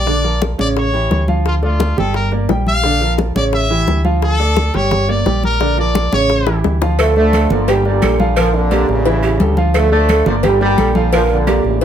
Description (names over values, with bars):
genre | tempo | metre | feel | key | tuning
latin, salsa | 174 BPM | 4/4 | straight | unclear | A4 = 440 Hz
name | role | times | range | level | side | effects
brilliant trumpet | melody | 0.0-6.6 s | F4 to F5 | -19 LUFS | left 1 dB | none
fingered electric bass | bass | 0.0-11.8 s | G1 to D2 | -17 LUFS | equal | none
warm concert grand piano | accompaniment | 0.1-11.8 s | C#3 to G5 | -19 LUFS | right 2 dB | none
bongos and cowbell | percussion | 0.1-11.8 s | none | -22 LUFS | left 8 dB | none
congas | percussion | 0.1-11.8 s | none | -21 LUFS | left 1 dB | none
bright trombone section | melody | 7.0-11.8 s | E2 to A3 | -17 LUFS | equal | tape echo
breathy mellow large pan pipes | second line | 7.0-11.8 s | G4 to Bb4 | -19 LUFS | right 6 dB | none
room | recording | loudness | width
light reverb | none | -12 LUFS | side -9 dB against mid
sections
0.0-7.0 A section; 7.0-11.8 B section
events
drum fill 6.5-7.0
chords
0.1 Bb; 0.8 A7; 1.5 Dm; 2.1 Gm; 2.8 Bb; 3.5 A7; 4.2 Dm; 4.9 Gm; 5.6 Bb; 6.3 A7; 7.0 Gm; 8.4 Bb; 9.1 A7; 9.7 Gm; 11.1 Bb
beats
| 0.07 0.41 0.76 1.11 | 1.45 1.80 2.15 2.49 | 2.84 3.18 3.53 3.88 | 4.22 4.57 4.91 5.26 | 5.61 5.95 6.30 6.64 | 6.99 7.33 7.68 8.02 | 8.37 8.71 9.06 9.40 | 9.75 10.09 10.44 10.78 | 11.13 11.47 11.81